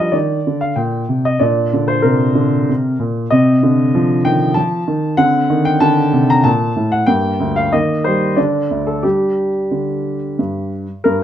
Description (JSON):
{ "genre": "classical-period piano sonatina", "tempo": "88-96 BPM", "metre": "3/4", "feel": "rubato", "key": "G minor", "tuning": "A4 = 436 Hz", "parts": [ { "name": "clear baby grand piano", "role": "solo", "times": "0.0-11.2 s", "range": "D2 to Bb5", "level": "-13 LUFS", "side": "equal", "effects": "none" } ], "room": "light reverb", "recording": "dark, warm production", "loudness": "-13 LUFS", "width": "side -10 dB against mid", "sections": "0.0-11.1 A section", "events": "none", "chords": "0.0 Gm; 1.4 Bbadd9; 3.3 Adim/C; 5.2 D5; 7.1 Gm; 7.7 Eb; 8.4 N.C.; 9.0 G5" }